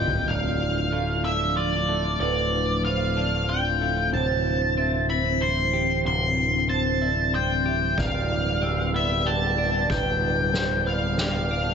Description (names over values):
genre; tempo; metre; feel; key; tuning
post-rock; 94 BPM; 3/4; straight; D dorian; A4 = 440 Hz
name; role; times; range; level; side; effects
octave-fuzz lead guitar; melody; 0.0-11.7 s; D5 to C6; -25 LUFS; left 2 dB; distortion, tape echo
ethereal airy pad; sustained chords; 0.0-11.7 s; B2 to F4; -32 LUFS; left 1 dB; ensemble chorus, built-in reverb
twelve-string electric guitar; arpeggios; 0.0-11.7 s; D2 to C5; -32 LUFS; left 4 dB; tape echo
vibraphone with soft mallets; arpeggios; 0.0-11.7 s; B4 to E6; -31 LUFS; right 8 dB; tape echo
growling picked electric bass; bass; 0.0-11.7 s; D1; -27 LUFS; equal; overdrive
soft-mallet drum kit; drums; 0.1-0.2, 8.0-11.3 s; kick drum, ride cymbal, snare drum, toms; -31 LUFS; equal; none
room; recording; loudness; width
light reverb, studio ambience; nothing above 7.8 kHz; -21 LUFS; side -6 dB against mid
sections
0.3-11.7 A section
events
drum fill 0.0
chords
0.3 Dm; 4.1 C/D; 8.0 G/D